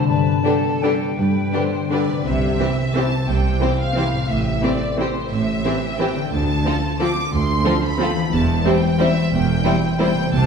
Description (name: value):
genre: classical, orchestral ballroom waltz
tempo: 156-194 BPM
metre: 3/4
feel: rubato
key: C major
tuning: A4 = 439 Hz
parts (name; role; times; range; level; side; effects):
- clear symphonic violin section; melody; 0.0-10.5 s; A4 to D6; -26 LUFS; left 1 dB; none
- silver concert flute; second line; 0.0-1.9 s; G5 to A5; -27 LUFS; left 4 dB; none
- concert harp; arpeggios; 0.0-10.5 s; G2 to G4; -23 LUFS; left 4 dB; none
- clear studio cello section; bass; 0.1-10.5 s; D2 to C3; -25 LUFS; right 3 dB; none
- rich studio violin section; second line; 0.4-10.1 s; E4 to C5; -26 LUFS; left 2 dB; none
- clear symphonic viola section; accompaniment; 0.4-10.1 s; D3 to D4; -24 LUFS; right 1 dB; none
- rich symphonic double bass section; bass; 2.3-10.5 s; E1 to D2; -23 LUFS; right 4 dB; none
room: wet recital hall reverb, RT60 1.6 s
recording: heard from further back in the room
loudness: -17 LUFS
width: side -6 dB against mid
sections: 0.0-2.3 A section; 2.3-10.5 B section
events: none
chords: 0.1 G; 2.3 C; 4.3 Am7; 6.3 Dm7; 8.3 C/E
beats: | 0.08 0.45 0.82 | 1.18 1.54 1.91 | 2.26 2.60 2.95 | 3.28 3.62 3.97 | 4.30 4.63 4.98 | 5.31 5.65 5.99 | 6.32 6.65 7.00 | 7.33 7.65 8.00 | 8.32 8.65 9.00 | 9.32 9.65 10.00 | 10.32